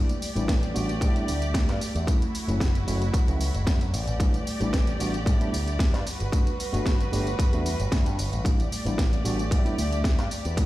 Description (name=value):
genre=nu-disco, nu disco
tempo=113 BPM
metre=4/4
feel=straight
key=unclear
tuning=A4 = 439 Hz
part: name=tine electric piano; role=accompaniment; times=0.0-10.7 s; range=F#3 to G4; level=-32 LUFS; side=moving between left 3 dB and right 3 dB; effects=auto-pan, sidechain pumping, slapback echo
part: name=muted studio string section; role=sustained chords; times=0.0-10.7 s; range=G3 to D5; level=-33 LUFS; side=equal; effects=vintage 12-bit sampler grit, sidechain pumping
part: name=house drum kit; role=drums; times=0.1-10.7 s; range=hi-hat, snare drum, tambourine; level=-33 LUFS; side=equal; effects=overdrive
part: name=picked electric bass with an envelope filter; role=bass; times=0.4-10.6 s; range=F#1 to A2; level=-28 LUFS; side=equal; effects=none
part: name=electronic kick drum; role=drums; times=0.5-10.7 s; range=none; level=-24 LUFS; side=equal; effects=overdrive
room=light reverb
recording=played on a big sound system in a bare room, stone room reverb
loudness=-23 LUFS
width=side -16 dB against mid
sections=0.0-10.7 A section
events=none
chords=0.0 A7sus4; 2.1 F#m7; 3.9 A7sus4; 6.1 Gmaj7; 8.5 A7sus4